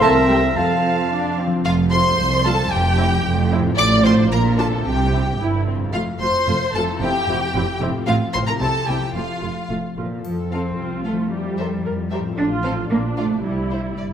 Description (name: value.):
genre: cinematic, playful, whimsical film cue.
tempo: 112 BPM.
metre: 2/4.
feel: straight.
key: F major.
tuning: A4 = 440 Hz.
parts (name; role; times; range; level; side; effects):
rich studio violin section; melody; 0.0-14.1 s; C5 to D6; -24 LUFS; left 2 dB; none.
clear clarinet; second line; 0.0-1.4 s; E5 to F5; -24 LUFS; left 2 dB; none.
clear oboe; second line; 0.0-1.4 s; A5 to Bb5; -24 LUFS; right 6 dB; none.
dark symphonic violin section; second line; 0.0-13.8 s; E4 to A5; -25 LUFS; equal; none.
mellow hollow concert flute; second line; 0.0-1.4 s; F5 to A5; -25 LUFS; right 2 dB; none.
dark studio viola section; accompaniment; 0.0-14.1 s; A3 to Bb4; -26 LUFS; right 1 dB; none.
mellow French horn section; sustained chords; 0.0-1.4 s; F4 to A4; -24 LUFS; left 3 dB; none.
concert harp; arpeggios; 0.0-14.1 s; F2 to C6; -28 LUFS; left 5 dB; none.
dark studio cello section; bass; 0.0-14.0 s; C2 to D4; -23 LUFS; right 3 dB; none.
dark studio double bass section; bass; 0.0-14.1 s; F1 to F2; -24 LUFS; right 2 dB; none.
triangle; percussion; 10.2-11.3 s; none; -52 LUFS; left 4 dB; none.
room: wet scoring stage reverb, RT60 1.5 s.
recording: none.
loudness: -17 LUFS.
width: side -8 dB against mid.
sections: 0.0-1.6 A section; 1.6-10.2 A section; 10.2-14.1 B section.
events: none.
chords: 0.0 C7; 0.6 F; 2.7 C7/F; 3.8 F/A; 4.3 Bb; 4.8 C; 5.9 F; 7.0 C7/F; 8.1 F/A; 8.6 C; 9.1 F; 11.3 C7/F; 12.4 F/A; 12.9 Bb; 13.4 C.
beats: 0.02 | 0.56 1.11 | 1.65 2.18 | 2.71 3.24 | 3.77 4.31 | 4.85 5.39 | 5.93 6.47 | 7.00 7.53 | 8.06 8.60 | 9.14 9.69 | 10.23 10.77 | 11.30 11.84 | 12.36 12.90 | 13.43 13.97.